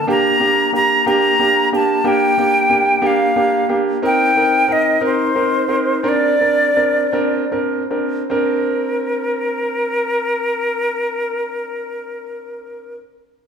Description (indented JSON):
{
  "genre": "pop",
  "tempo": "50-61 BPM (dotted quarters)",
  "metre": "6/8",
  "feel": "straight",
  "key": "Bb major",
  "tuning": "A4 = 443 Hz",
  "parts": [
    { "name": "silver concert flute", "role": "melody", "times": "0.0-13.0 s", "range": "Bb4 to Bb5", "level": "-16 LUFS", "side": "equal", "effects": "none" },
    { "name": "warm concert grand piano", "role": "accompaniment", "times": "0.1-13.0 s", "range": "Bb3 to Bb4", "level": "-18 LUFS", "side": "right 1 dB", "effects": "none" }
  ],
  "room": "wet large studio reverb, RT60 1.4 s",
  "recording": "band playing live in one room",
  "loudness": "-14 LUFS",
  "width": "side -6 dB against mid",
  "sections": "0.0-8.3 A section; 8.3-13.1 B section",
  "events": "slowing down 4.0-8.3",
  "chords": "0.1 Gm; 4.0 Cm7; 6.0 Bbadd9"
}